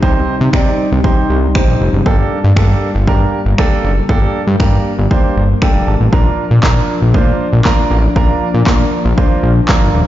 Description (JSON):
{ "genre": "dance-pop", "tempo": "118 BPM", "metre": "4/4", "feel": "straight", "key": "Bb major", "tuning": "A4 = 440 Hz", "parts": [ { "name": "warm grand piano", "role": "accompaniment", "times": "0.0-10.0 s", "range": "Bb3 to A5", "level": "-18 LUFS", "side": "right 4 dB", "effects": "sidechain pumping" }, { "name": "warm analog pad", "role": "sustained chords", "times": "0.0-10.1 s", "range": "C3 to Eb4", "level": "-20 LUFS", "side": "left 2 dB", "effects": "chorus, sidechain pumping" }, { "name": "fat analog bass", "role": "bass", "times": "0.0-10.0 s", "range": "Eb1 to C3", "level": "-12 LUFS", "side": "equal", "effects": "sidechain pumping" }, { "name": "punchy analog drum machine", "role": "drums", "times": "0.0-9.8 s", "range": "finger snaps, handclaps, kick drum, snare drum", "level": "-14 LUFS", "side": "equal", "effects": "none" }, { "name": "downlifter", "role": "sound effects", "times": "0.0-2.1 s", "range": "none", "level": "barely audible", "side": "none", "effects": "none" } ], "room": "light reverb", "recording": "played on a big sound system in a bare room, stone room reverb, nothing above 7.5 kHz", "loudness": "-10 LUFS", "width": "side -13 dB against mid", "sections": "0.0-10.1 A section", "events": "grand piano fill 5.4-6.1", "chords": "0.0 Cm; 2.1 Gmadd9; 6.1 Bb" }